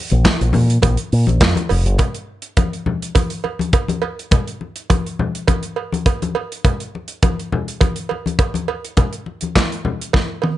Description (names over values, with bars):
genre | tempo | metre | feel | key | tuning
disco | 103 BPM | 4/4 | straight | unclear | A4 = 443 Hz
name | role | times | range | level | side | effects
fingered electric bass with an envelope filter | bass | 0.1-2.0 s | F1 to Bb2 | -15 LUFS | equal | none
modern studio drum kit | drums | 0.1-10.6 s | handclaps, hi-hat, kick drum, snare drum, toms | -17 LUFS | equal | none
congas | percussion | 0.1-10.6 s | none | -23 LUFS | left 4 dB | none
cowbell | percussion | 0.2-10.6 s | none | -23 LUFS | right 8 dB | none
room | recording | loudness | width
little or no reverb | nothing above 10.6 kHz | -16 LUFS | side -14 dB against mid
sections
0.0-2.0 A section; 2.0-10.6 B section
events
drum fill 10.1-10.6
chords
none